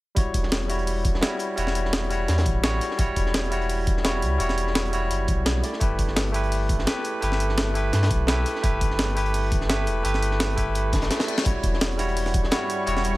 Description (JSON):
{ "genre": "liquid drum and bass", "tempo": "170 BPM", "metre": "4/4", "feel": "swing 53% on 16ths", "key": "E dorian", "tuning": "A4 = 440 Hz", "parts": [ { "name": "barky tine electric piano", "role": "accompaniment", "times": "0.1-13.2 s", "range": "G3 to D5", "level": "-26 LUFS", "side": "equal", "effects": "medium stereo tremolo, digital delay" }, { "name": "warm sub bass", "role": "bass", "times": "0.2-13.2 s", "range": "E1 to G2", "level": "-26 LUFS", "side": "equal", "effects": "none" }, { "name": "breakbeat sampler-style drum kit", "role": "drums", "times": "0.2-13.1 s", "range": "hi-hat, snare drum", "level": "-28 LUFS", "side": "equal", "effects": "none" }, { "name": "crunchy breakbeat drum kit", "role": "drums", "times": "0.2-13.2 s", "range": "hi-hat, snare drum", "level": "-34 LUFS", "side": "equal", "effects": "high-pass filter on hats, high-pass filter on snare, high-pass filter on room" }, { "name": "electronic kick drum", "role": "drums", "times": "0.2-12.4 s", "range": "none", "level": "-24 LUFS", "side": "equal", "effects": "none" }, { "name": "reverse cymbal", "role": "sound effects", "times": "10.9-11.5 s", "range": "none", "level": "-38 LUFS", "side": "left 7 dB", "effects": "none" }, { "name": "lush unison pad", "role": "sustained chords", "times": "11.9-13.2 s", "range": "G3 to C#6", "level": "-32 LUFS", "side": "right 1 dB", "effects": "chorus, phaser, sidechain pumping" } ], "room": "little or no reverb", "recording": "none", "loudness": "-21 LUFS", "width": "side -19 dB against mid", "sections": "0.2-13.2 A section", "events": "reverse cymbal 10.9-11.5; drum fill 11.1-11.5", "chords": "0.2 Em69; 5.6 G69; 11.5 Em69", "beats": "| 0.17 0.52 0.87 1.22 | 1.58 1.93 2.28 2.64 | 2.99 3.34 3.69 4.05 | 4.40 4.75 5.11 5.46 | 5.81 6.17 6.52 6.87 | 7.22 7.58 7.93 8.28 | 8.64 8.99 9.34 9.70 | 10.05 10.40 10.75 11.11 | 11.46 11.81 12.17 12.52 | 12.87" }